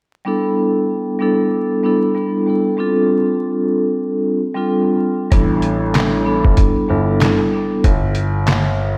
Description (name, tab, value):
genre	hip hop, boom-bap hip-hop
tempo	95 BPM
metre	4/4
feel	swing 60% on 16ths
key	A minor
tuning	A4 = 440 Hz
part	vibraphone with soft mallets	accompaniment	0.2-7.8 s	G3 to A4	-18 LUFS	equal	high-pass filter, low-pass filter
part	dark baby grand piano	bass	5.3-8.9 s	G1 to A1	-21 LUFS	equal	none
part	trip hop sampler-style drum kit	drums	5.3-8.7 s	handclaps, hi-hat, kick drum, snare drum	-18 LUFS	equal	none
room	moderate lush hall reverb, RT60 2.0 s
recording	dreamy mix soaked in reverb, vinyl crackle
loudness	-17 LUFS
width	mono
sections	0.3-9.0 A section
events	none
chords	0.3 A9sus4; 2.8 G9sus4; 5.3 A9sus4; 7.8 N.C.